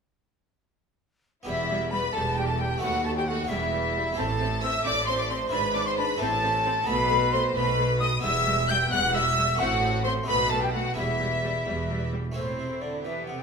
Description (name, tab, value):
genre	classical, baroque-style concerto movement with solo episodes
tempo	88 BPM (dotted quarters)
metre	6/8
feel	straight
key	E minor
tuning	A4 = 440 Hz
part	harpsichord	accompaniment	1.4-13.4 s	D#2 to C5	-37 LUFS	equal	none
part	rich chamber violin section	melody	1.5-13.4 s	A4 to G6	-31 LUFS	left 1 dB	none
part	silver concert flute	melody	1.5-13.4 s	C5 to G6	-29 LUFS	left 1 dB	none
part	rich chamber violin section	second line	1.5-13.4 s	E4 to G5	-30 LUFS	left 1 dB	none
part	bright studio viola section	accompaniment	1.5-13.4 s	G3 to D4	-36 LUFS	right 2 dB	none
part	clear chamber cello section	bass	1.5-13.4 s	D#2 to E3	-32 LUFS	right 2 dB	none
part	clear chamber double bass section	bass	1.5-12.3 s	E1 to D#2	-32 LUFS	right 2 dB	none
room	wet recital hall reverb, RT60 1.4 s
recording	minimal, uncompressed stereo recording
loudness	-23 LUFS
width	side -5 dB against mid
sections	1.5-12.4 A section; 12.4-13.4 B section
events	none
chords	1.5 Em; 2.8 B7/D#; 3.5 Em; 4.2 Am; 5.5 E7/G#; 6.2 Am; 6.9 B7; 8.2 Em; 9.6 F#dim/A; 10.3 B7; 11.0 Em; 12.4 Am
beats	| 1.46 2.14 | 2.82 3.50 | 4.17 4.85 | 5.53 6.20 | 6.88 7.55 | 8.23 8.91 | 9.59 10.28 | 10.97 11.66 | 12.36 13.04